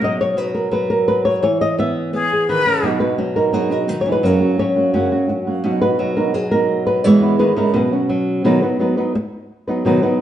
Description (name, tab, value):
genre	flamenco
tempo	171 BPM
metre	4/4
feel	straight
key	B major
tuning	A4 = 441 Hz
part	flamenco guitar	melody	0.0-10.2 s	B2 to E5	-16 LUFS	equal	none
part	breathy bright jazz flute	second line	2.1-2.9 s	G#4 to B4	-19 LUFS	left 2 dB	none
part	flamenco guitar	stabs	2.8-8.5 s	E2 to F#4	-19 LUFS	right 3 dB	none
room	wet stone room reverb, RT60 1.2 s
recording	heard from further back in the room, nothing above 10.5 kHz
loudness	-15 LUFS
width	side -11 dB against mid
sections	0.0-8.5 A section; 8.5-10.2 B section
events	none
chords	0.0 B; 1.4 E; 2.8 B; 4.2 F#; 5.6 B; 7.0 E; 7.8 Bsus2; 8.5 B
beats	| 0.02 0.37 0.72 1.07 | 1.43 1.78 2.13 2.48 | 2.83 3.18 3.53 3.89 | 4.24 4.59 4.94 5.29 | 5.64 6.00 6.35 6.70 | 7.05 7.40 7.75 8.11 | 8.46 8.81 9.16 9.51 | 9.86